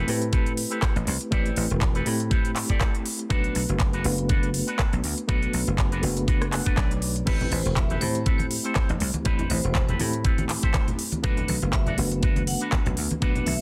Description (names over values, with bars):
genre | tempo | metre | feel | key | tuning
nu-disco, nu disco | 121 BPM | 4/4 | swing 55% on 16ths | A dorian | A4 = 440 Hz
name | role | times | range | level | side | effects
mellow reed electric piano | accompaniment | 0.0-13.6 s | A3 to B5 | -33 LUFS | equal | fast tremolo, slapback echo
electric guitar with an envelope filter | riff | 0.0-13.5 s | C4 to F#5 | -36 LUFS | equal | subtle chorus, slapback echo
dry thumbed slap bass | bass | 0.0-13.6 s | E1 to A2 | -30 LUFS | equal | sidechain pumping
pop drum kit | drums | 0.1-13.6 s | crash cymbal, handclaps, hi-hat, rim click | -33 LUFS | equal | none
electronic kick drum | drums | 0.3-13.3 s | none | -26 LUFS | equal | none
congas | percussion | 7.4-13.6 s | none | -35 LUFS | equal | none
vibraphone with hard mallets | melody | 7.5-13.6 s | B4 to F#5 | -39 LUFS | equal | tape echo
room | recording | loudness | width
little or no reverb | dense, heavily limited modern master | -25 LUFS | mono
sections
0.0-13.6 A section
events
clean electric guitar fill 6.3-7.3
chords
0.0 Am9; 3.3 Bm7; 7.3 Am9; 11.2 Bm7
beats
0.33 0.82 | 1.32 1.82 2.31 2.81 | 3.30 3.80 4.29 4.79 | 5.29 5.78 6.28 6.78 | 7.27 7.77 8.26 8.76 | 9.25 9.75 10.25 10.74 | 11.24 11.73 12.23 12.72 | 13.22